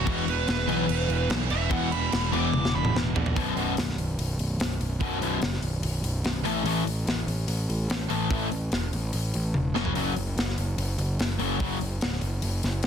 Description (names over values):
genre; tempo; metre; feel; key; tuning
hard rock; 146 BPM; 4/4; straight; unclear; A4 = 441 Hz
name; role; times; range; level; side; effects
smooth overdriven lead guitar; melody; 0.0-2.9 s; F#4 to D6; -30 LUFS; right 4 dB; slapback echo
distorted electric guitar; riff; 0.0-3.4 s; E2 to E3; -32 LUFS; right 1 dB; overdrive
fuzz picked electric bass; bass; 0.0-12.9 s; B0 to B1; -28 LUFS; equal; overdrive
crunchy overdriven guitar; riff; 0.1-11.8 s; B1 to A3; -30 LUFS; left 12 dB; none
overdriven electric guitar; riff; 0.1-11.8 s; B1 to A3; -34 LUFS; right 15 dB; none
tight metal drum kit; drums; 0.1-12.9 s; crash cymbal, hi-hat, kick drum, snare drum, toms; -30 LUFS; equal; soft clipping on kick
room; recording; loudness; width
studio ambience; dense, heavily limited modern master; -24 LUFS; side -8 dB against mid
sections
0.0-3.4 A section; 3.4-12.9 B section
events
lead electric guitar solo 0.0-3.4; drum fill 2.5-3.4, 9.5-10.0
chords
0.1 E5; 3.4 B5; 6.5 A5; 9.8 F#5